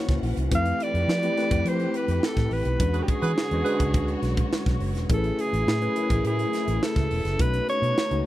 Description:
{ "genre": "polished 1980s jazz-funk pop", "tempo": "105 BPM", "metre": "4/4", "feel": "straight", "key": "unclear", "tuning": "A4 = 440 Hz", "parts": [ { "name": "clear alto saxophone", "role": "melody", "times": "0.0-8.2 s", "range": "G4 to F5", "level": "-28 LUFS", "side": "right 1 dB", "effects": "none" }, { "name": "mellow tine electric piano", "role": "accompaniment", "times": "0.0-8.3 s", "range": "G#3 to C#5", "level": "-29 LUFS", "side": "left 2 dB", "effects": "lush chorus" }, { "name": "warm studio string section", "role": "sustained chords", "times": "0.0-8.3 s", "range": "C#3 to F#5", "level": "-36 LUFS", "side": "left 1 dB", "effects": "none" }, { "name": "vintage muted fingered electric bass", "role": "bass", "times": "0.1-8.2 s", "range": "E1 to F3", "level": "-26 LUFS", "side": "equal", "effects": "none" }, { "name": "crisp fusion drum kit", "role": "drums", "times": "0.1-8.2 s", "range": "hi-hat, kick drum, snare drum", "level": "-27 LUFS", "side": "equal", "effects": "none" }, { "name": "warm horn section", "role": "second line", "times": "2.9-3.8 s", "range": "F#4 to B4", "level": "-28 LUFS", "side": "right 5 dB", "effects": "none" } ], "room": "little or no reverb", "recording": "none", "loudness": "-22 LUFS", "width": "side -15 dB against mid", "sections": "0.0-8.3 A section", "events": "band accent 2.8-5.1", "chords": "0.0 F#7#11; 0.5 Fmaj9#11; 2.8 E13; 5.1 Amaj7; 7.4 B9" }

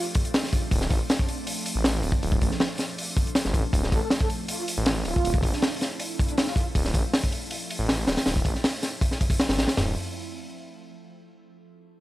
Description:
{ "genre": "drum and bass, jungle", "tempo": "159 BPM", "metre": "4/4", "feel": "straight", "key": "D minor", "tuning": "A4 = 440 Hz", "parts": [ { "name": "breathy flute-like synth lead", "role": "melody", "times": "0.0-0.1, 3.9-6.6 s", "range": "D4 to A4", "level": "-34 LUFS", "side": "right 2 dB", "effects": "ensemble chorus, vintage 12-bit sampler grit, dub echo" }, { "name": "ethereal airy pad", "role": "sustained chords", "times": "0.0-9.9 s", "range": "F3 to E4", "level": "-37 LUFS", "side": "right 1 dB", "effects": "ensemble chorus, built-in reverb, phaser" }, { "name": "crunchy breakbeat drum kit", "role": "drums", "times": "0.1-9.9 s", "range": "hi-hat, kick drum, snare drum, toms", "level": "-24 LUFS", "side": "equal", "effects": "none" }, { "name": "detuned saw bass", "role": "bass", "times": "0.7-9.9 s", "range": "D1 to A1", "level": "-28 LUFS", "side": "equal", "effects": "none" } ], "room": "studio reverb", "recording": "dry, gritty hardware recording", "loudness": "-23 LUFS", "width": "side -16 dB against mid", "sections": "0.0-9.8 A section; 9.8-11.3 B section", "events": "drop 0.0-9.8", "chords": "0.0 Dm7" }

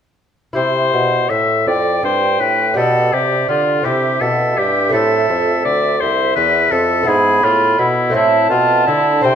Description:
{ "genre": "classical, baroque-style sonata movement with continuo", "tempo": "55 BPM (dotted quarters)", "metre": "6/8", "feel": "rubato", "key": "C major", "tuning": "A4 = 440 Hz", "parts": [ { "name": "lute", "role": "accompaniment", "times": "0.5-9.3 s", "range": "D2 to G4", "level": "-21 LUFS", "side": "right 1 dB", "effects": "none" }, { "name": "clear oboe", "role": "melody", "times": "0.6-9.3 s", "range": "E4 to E5", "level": "-17 LUFS", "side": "left 5 dB", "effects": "none" }, { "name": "warm bassoon", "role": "bass", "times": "0.6-9.3 s", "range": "C2 to D3", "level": "-18 LUFS", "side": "right 2 dB", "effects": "none" }, { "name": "silver concert flute", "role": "second line", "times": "1.7-9.3 s", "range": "D5 to B5", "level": "-19 LUFS", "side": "right 4 dB", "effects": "none" } ], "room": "wet recital hall reverb, RT60 1.5 s", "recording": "none", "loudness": "-13 LUFS", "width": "side -8 dB against mid", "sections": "0.6-9.3 A section", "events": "none", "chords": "0.6 C; 2.8 G/B; 3.9 C; 4.9 Am; 7.1 E/G#; 8.1 Am" }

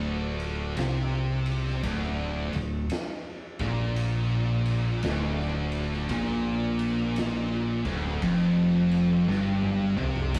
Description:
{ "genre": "stoner and doom metal", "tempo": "56 BPM", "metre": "4/4", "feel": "swing 65% on 8ths", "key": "D minor", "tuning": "A4 = 439 Hz", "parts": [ { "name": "heavy high-gain guitar", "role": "riff", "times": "0.0-10.3 s", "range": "D2 to C3", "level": "-37 LUFS", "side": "equal", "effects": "distortion" }, { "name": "thick fuzz guitar", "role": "riff", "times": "0.0-10.4 s", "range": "D2 to C3", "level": "-32 LUFS", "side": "equal", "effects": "distortion" }, { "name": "thick fuzz guitar", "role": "riff", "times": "0.0-10.4 s", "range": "D2 to C3", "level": "-31 LUFS", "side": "equal", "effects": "distortion" }, { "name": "growling fingered electric bass", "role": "bass", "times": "0.0-10.4 s", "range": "D1 to C2", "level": "-35 LUFS", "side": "equal", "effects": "overdrive" }, { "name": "oversized low-tuned drum kit", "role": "drums", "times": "0.4-10.4 s", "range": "crash cymbal, kick drum, ride cymbal, snare drum, toms", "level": "-38 LUFS", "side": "equal", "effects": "none" } ], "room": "moderate small room reverb, RT60 0.5 s", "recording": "rough rehearsal-room recording", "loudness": "-27 LUFS", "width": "mono", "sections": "0.0-10.3 A section", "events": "drum fill 9.3-10.3", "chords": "0.0 Dm" }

